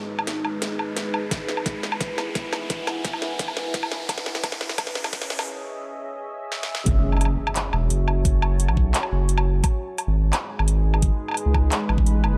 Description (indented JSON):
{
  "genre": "half-time drum and bass",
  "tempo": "173 BPM",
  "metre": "4/4",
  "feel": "half-time",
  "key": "F# dorian",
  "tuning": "A4 = 440 Hz",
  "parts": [
    { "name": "deep dark ambient pad", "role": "sustained chords", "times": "0.0-12.4 s", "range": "G#3 to A5", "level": "-33 LUFS", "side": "equal", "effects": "chorus, built-in reverb, sidechain pumping" },
    { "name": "riser and impact", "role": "sound effects", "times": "0.0-8.3 s", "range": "none", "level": "-35 LUFS", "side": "equal", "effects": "none" },
    { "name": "drum and bass drum kit", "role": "drums", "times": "0.2-12.3 s", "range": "handclaps, hi-hat, snare drum, woodblock", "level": "-30 LUFS", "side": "equal", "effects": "high-pass filter on snare, high-pass filter on hats, high-pass filter on perc, high-pass filter on room" },
    { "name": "electronic kick drum", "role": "drums", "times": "1.3-12.0 s", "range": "none", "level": "-26 LUFS", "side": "equal", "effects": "none" },
    { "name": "saturated sub bass", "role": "bass", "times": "6.9-12.4 s", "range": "E1 to C#2", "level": "-23 LUFS", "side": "equal", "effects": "none" }
  ],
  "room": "light reverb, digital ambience",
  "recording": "dark, warm production, high-pass filter",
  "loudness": "-24 LUFS",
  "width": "mono",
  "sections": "0.0-6.9 A section; 6.9-12.4 B section",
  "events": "build-up 0.0-6.9; drum fill 0.0-5.5, 6.5-6.9; riser 0.0-5.5; filter sweep 0.0-6.9; break 5.5-6.9; drop 6.9-12.4; impact 6.9-8.3",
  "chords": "0.0 G#m; 1.3 Eadd9; 4.1 C#m; 6.9 F#m; 9.6 G#m",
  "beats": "0.28 0.62 0.97 | 1.31 1.66 2.01 2.36 | 2.70 3.05 3.40 3.74 | 4.09 4.44 4.78 5.13 | 5.48 5.82 6.17 6.52 | 6.87 7.21 7.56 7.91 | 8.25 8.60 8.95 9.29 | 9.64 9.99 10.33 10.68 | 11.03 11.37 11.72 12.07"
}